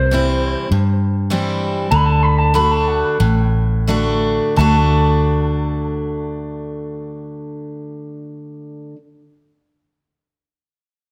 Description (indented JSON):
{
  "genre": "honky-tonk and classic country",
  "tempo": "83-103 BPM",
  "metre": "4/4",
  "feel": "straight",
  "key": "D mixolydian",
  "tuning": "A4 = 444 Hz",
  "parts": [
    { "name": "electric guitar through a small old amp", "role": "second line", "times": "0.0-8.9 s", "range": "C5 to B5", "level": "-22 LUFS", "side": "equal", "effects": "spring reverb, tape echo" },
    { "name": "picked steel-string acoustic guitar", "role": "accompaniment", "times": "0.0-9.0 s", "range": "G2 to F#4", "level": "-22 LUFS", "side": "equal", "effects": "none" },
    { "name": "vintage muted fingered electric bass", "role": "bass", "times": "0.0-8.9 s", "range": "A1 to G2", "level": "-20 LUFS", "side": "equal", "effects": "none" }
  ],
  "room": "moderate recital hall reverb, RT60 1.4 s",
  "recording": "close, detailed microphones",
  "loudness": "-17 LUFS",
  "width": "mono",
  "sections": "0.0-4.6 A section; 4.6-7.5 B section",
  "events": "slowing down 0.0-4.6; clean electric guitar solo 0.0-4.6",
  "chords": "0.0 C; 1.9 D"
}